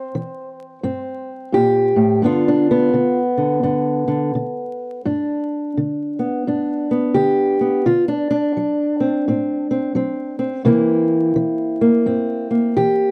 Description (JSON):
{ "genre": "acoustic country blues, solo or duo", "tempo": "85 BPM", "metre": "4/4", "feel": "swing 61% on 8ths", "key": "unclear", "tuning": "A4 = 440 Hz", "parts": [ { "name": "fingerpicked old ladder-braced acoustic guitar", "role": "solo", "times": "0.0-13.1 s", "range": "G2 to C5", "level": "-19 LUFS", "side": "equal", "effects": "none" } ], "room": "light reverb", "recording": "dry, close 1970s-style studio recording, vinyl crackle", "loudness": "-19 LUFS", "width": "mono", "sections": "0.0-13.1 A section", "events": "none", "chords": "0.0 C7; 2.2 G7; 7.9 D7; 10.7 C7" }